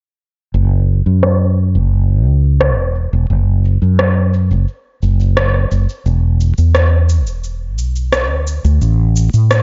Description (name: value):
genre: sunset chillout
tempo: 87 BPM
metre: 4/4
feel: straight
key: F# minor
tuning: A4 = 441 Hz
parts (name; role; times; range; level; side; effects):
- mellow fretless electric bass; bass; 0.5-9.6 s; E1 to A2; -14 LUFS; equal; none
- electronic cabasa and rim click; drums; 0.5-9.6 s; none; -20 LUFS; equal; low-pass filter on perc, low-pass filter on snare, low-pass filter on room
room: little or no reverb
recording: dry, gritty hardware recording, transformer saturation, nothing above 7.6 kHz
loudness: -14 LUFS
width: mono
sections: 0.5-9.6 A section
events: filter sweep on drum 0.5-9.6; filter sweep on fretless electric bass 0.5-9.6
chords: none